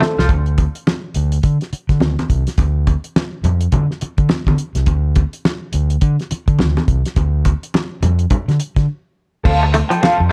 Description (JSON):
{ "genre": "funk", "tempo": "105 BPM", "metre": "4/4", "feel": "swing 60% on 16ths", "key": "D minor", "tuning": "A4 = 439 Hz", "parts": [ { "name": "clean electric guitar", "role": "accompaniment", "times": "0.0-0.3, 9.4-10.3 s", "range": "A4 to G5", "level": "-21 LUFS", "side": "equal", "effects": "wah, spring reverb" }, { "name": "semi-hollow electric guitar", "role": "riff", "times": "0.0-0.1, 9.6-10.0 s", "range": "F3 to A3", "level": "-22 LUFS", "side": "equal", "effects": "none" }, { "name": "cloth-damped thuddy drum kit", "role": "drums", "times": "0.0-10.2 s", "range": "crash cymbal, hi-hat, kick drum, snare drum", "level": "-20 LUFS", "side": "equal", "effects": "none" }, { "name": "overdriven fingered electric bass", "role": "bass", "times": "0.2-10.3 s", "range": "C2 to D3", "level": "-18 LUFS", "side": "equal", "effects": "none" }, { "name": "congas", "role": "percussion", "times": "0.3-10.2 s", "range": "none", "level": "-26 LUFS", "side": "equal", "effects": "none" } ], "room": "small room ambience", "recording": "none", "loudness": "-17 LUFS", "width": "mono", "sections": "0.3-9.5 A section", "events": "drum fill 0.0; break 8.9-9.5", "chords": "0.3 N.C.; 9.5 Dm7" }